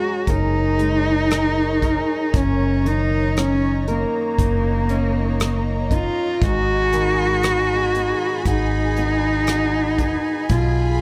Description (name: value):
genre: acoustic folk-pop ballad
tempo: 59 BPM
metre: 4/4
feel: straight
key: Eb minor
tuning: A4 = 438 Hz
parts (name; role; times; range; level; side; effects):
- dark cello; melody; 0.0-11.0 s; Bb3 to Gb4; -23 LUFS; equal; none
- fingerpicked old ladder-braced acoustic guitar; accompaniment; 0.0-11.0 s; Gb2 to Cb5; -29 LUFS; equal; none
- lush unison pad; sustained chords; 0.0-11.0 s; Eb4 to Cb6; -33 LUFS; equal; chorus, phaser
- fingered electric bass; bass; 0.3-11.0 s; Gb1 to B1; -25 LUFS; equal; none
- soft brush drum kit; drums; 0.3-10.7 s; hi-hat, kick drum, rim click; -26 LUFS; equal; none
room: little or no reverb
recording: close, detailed microphones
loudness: -20 LUFS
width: mono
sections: 0.0-11.0 A section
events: none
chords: 0.0 Gbadd9; 2.3 Ebm7/Gb; 6.4 Abm7; 10.5 B6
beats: 0.27 1.31 | 2.34 3.37 4.38 5.40 | 6.41 7.43 8.45 9.47 | 10.50